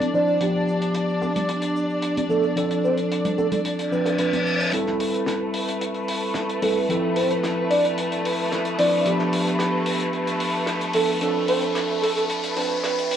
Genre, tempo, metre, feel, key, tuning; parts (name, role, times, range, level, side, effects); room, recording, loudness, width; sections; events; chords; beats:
nu-disco, nu disco; 111 BPM; 4/4; straight; A minor; A4 = 441 Hz
mellow tine electric piano; accompaniment; 0.0-13.2 s; F3 to C5; -24 LUFS; right 1 dB; medium stereo tremolo, cassette tape, tape echo
rich studio string section; sustained chords; 0.0-13.2 s; A3 to D5; -27 LUFS; left 1 dB; low-pass filter, cassette tape
damped 70s drum kit; drums; 0.0-13.2 s; hi-hat, snare drum; -30 LUFS; left 1 dB; high-pass filter on hats, cassette tape, high-pass filter on snare, high-pass filter on room
congas, tube shaker and bongos; percussion; 0.0-4.7 s; -29 LUFS; right 2 dB
soft octave-layered synth lead; melody; 0.1-12.2 s; A4 to D5; -23 LUFS; right 1 dB; chorus, tremolo, cassette tape, analog delay
reverse cymbal and riser; sound effects; 3.9-13.2 s; -31 LUFS; left 2 dB
wet booth ambience, RT60 0.2 s; home recording on cassette, high-pass filter, low-pass filter, studio ambience; -20 LUFS; side -9 dB against mid
0.0-4.7 A section; 4.7-13.2 B section
filter sweep 0.0-4.7; reverse cymbal 3.9-4.7; build-up 4.7-13.2; riser 4.7-13.2
0.4 G7; 2.6 Dm7; 4.7 Am7; 6.9 Fmaj7; 9.1 G7; 11.2 Dm7
| 0.41 0.95 1.49 2.03 | 2.57 3.11 3.65 4.19 | 4.73 5.27 5.81 6.35 | 6.89 7.43 7.97 8.52 | 9.06 9.60 10.14 10.68 | 11.22 11.76 12.30 12.84